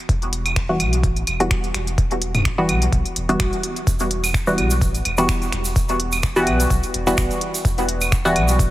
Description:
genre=dub techno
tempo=127 BPM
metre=4/4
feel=swing 55% on 16ths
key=E minor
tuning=A4 = 441 Hz
part: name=soft dub sub bass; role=bass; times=0.1-8.7 s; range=E1 to B1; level=-23 LUFS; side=equal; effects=sidechain pumping
part: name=deep house drum kit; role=drums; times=0.1-8.7 s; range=finger snaps, hi-hat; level=-27 LUFS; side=equal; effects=dub echo
part: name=electronic kick drum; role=drums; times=0.1-8.7 s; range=none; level=-21 LUFS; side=equal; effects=overdrive
part: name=electronic claves and toms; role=percussion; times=0.5-8.5 s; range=none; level=-24 LUFS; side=right 1 dB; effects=overdrive, sidechain pumping on perc, sidechain pumping on toms
part: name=filtered dub chord stab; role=stabs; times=0.7-8.7 s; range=E3 to F#4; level=-21 LUFS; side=equal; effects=chorus, phaser, cassette tape, sidechain pumping, dub echo
part: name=tube shaker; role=percussion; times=3.9-8.7 s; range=none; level=-29 LUFS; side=right 5 dB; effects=none
room=light reverb, digital ambience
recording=heavily compressed radio sound, multiband compression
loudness=-17 LUFS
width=side -15 dB against mid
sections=0.0-8.7 A section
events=none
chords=0.0 Emadd9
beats=| 0.09 0.56 1.04 1.51 | 1.98 2.45 2.92 3.40 | 3.87 4.34 4.82 5.29 | 5.76 6.23 6.71 7.18 | 7.65 8.12 8.60

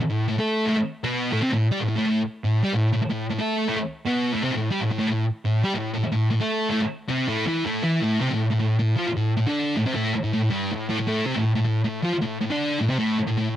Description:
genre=rock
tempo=159 BPM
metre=4/4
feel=straight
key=A minor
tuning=A4 = 438 Hz
part: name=thick fuzz guitar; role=solo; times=0.0-13.5 s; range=G2 to A4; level=-21 LUFS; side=equal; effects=distortion, cassette tape
room=light reverb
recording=home recording on cassette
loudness=-21 LUFS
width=side -11 dB against mid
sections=0.0-8.0 A section; 8.0-13.6 B section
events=none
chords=0.0 N.C.; 8.0 Am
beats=0.11 | 0.48 0.86 1.24 1.61 | 1.99 2.37 2.74 3.12 | 3.50 3.88 4.25 4.63 | 5.01 5.38 5.76 6.14 | 6.52 6.90 7.28 7.66 | 8.03 8.41 8.79 9.18 | 9.56 9.94 10.32 10.70 | 11.08 11.46 11.84 12.22 | 12.60 12.98 13.36

